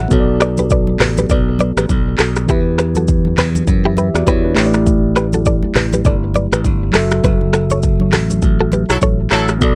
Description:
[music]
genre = afrobeats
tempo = 101 BPM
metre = 4/4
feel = swing 58% on 16ths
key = B minor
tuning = A4 = 439 Hz
[part]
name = mellow tine electric piano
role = accompaniment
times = 0.0-9.8 s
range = E3 to F#5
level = -21 LUFS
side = equal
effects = none
[part]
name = modern bright fingered electric bass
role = bass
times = 0.0-9.8 s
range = F#1 to F#2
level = -20 LUFS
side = equal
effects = none
[part]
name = afro-pop drum kit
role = drums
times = 0.1-9.8 s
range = finger snaps, handclaps, hi-hat, kick drum, rim click, shaker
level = -19 LUFS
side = equal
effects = vintage 12-bit sampler grit
[part]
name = congas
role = percussion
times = 0.1-9.8 s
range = none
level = -26 LUFS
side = equal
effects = none
[part]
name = direct-recorded clean electric guitar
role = riff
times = 0.4-9.2 s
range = E4 to D5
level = -21 LUFS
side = equal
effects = tape echo
[part]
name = warm horn section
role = second line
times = 8.9-9.5 s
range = F#3 to A4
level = -18 LUFS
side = equal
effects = none
[sound]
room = little or no reverb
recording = none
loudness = -15 LUFS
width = mono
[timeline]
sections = 0.1-9.8 A section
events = band accent 7.2-9.6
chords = 0.1 Bm7; 2.5 Em; 4.6 A7sus4; 6.9 F#m7

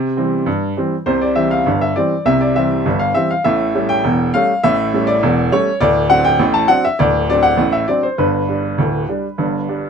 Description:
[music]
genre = ragtime piano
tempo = 101 BPM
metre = 2/4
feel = straight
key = C major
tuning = A4 = 441 Hz
[part]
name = bright upright piano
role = solo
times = 0.0-9.9 s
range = D1 to A5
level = -14 LUFS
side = equal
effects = none
[sound]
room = light reverb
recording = close, detailed microphones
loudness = -13 LUFS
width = side -6 dB against mid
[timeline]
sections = 0.0-1.1 A section; 1.1-9.9 B section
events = none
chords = 0.0 C; 3.4 A7; 5.8 D7; 8.2 G

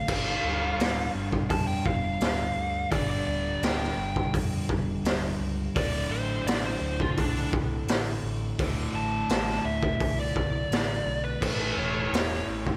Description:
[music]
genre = blues rock power trio and southern rock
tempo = 85 BPM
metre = 4/4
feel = straight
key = unclear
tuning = A4 = 436 Hz
[part]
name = biting lead guitar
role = melody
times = 0.0-12.5 s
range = D4 to A5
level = -34 LUFS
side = equal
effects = overdrive
[part]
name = crunchy overdriven guitar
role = riff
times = 0.0-12.8 s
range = D2 to A3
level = -35 LUFS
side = equal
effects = slapback echo
[part]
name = overdriven picked electric bass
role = bass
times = 0.1-12.8 s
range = D1 to F2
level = -36 LUFS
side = equal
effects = none
[part]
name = raw garage drum kit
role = drums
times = 0.1-12.8 s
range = crash cymbal, hi-hat, kick drum, snare drum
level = -31 LUFS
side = equal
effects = none
[sound]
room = light reverb, small room ambience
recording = none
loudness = -28 LUFS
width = mono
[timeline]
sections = 0.0-12.8 A section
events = lead electric guitar solo 0.0-12.8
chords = 0.1 G5; 5.8 D5; 11.4 A

